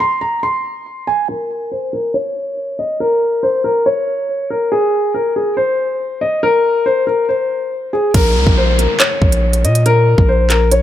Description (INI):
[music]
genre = hip hop, drill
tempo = 140 BPM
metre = 4/4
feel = half-time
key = Bb minor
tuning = A4 = 439 Hz
[part]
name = dark grand piano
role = melody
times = 0.0-10.8 s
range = Ab4 to C6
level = -15 LUFS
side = left 1 dB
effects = low-pass filter
[part]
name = long sustained 808-style bass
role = bass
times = 8.1-10.8 s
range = Bb1 to Bb2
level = -14 LUFS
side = equal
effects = none
[part]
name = drill drum kit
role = drums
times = 8.1-10.8 s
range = crash cymbal, handclaps, hi-hat, kick drum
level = -14 LUFS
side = equal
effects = none
[part]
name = downlifter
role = sound effects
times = 8.1-10.8 s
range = none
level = -23 LUFS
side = equal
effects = none
[sound]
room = moderate lush hall reverb, RT60 2.0 s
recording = none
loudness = -13 LUFS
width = side -11 dB against mid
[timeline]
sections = 0.0-1.3 A section; 1.3-8.1 B section; 8.1-10.8 C section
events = break 0.0-1.3; filter sweep on grand piano 1.3-8.1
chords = 0.0 N.C.; 8.1 Bbm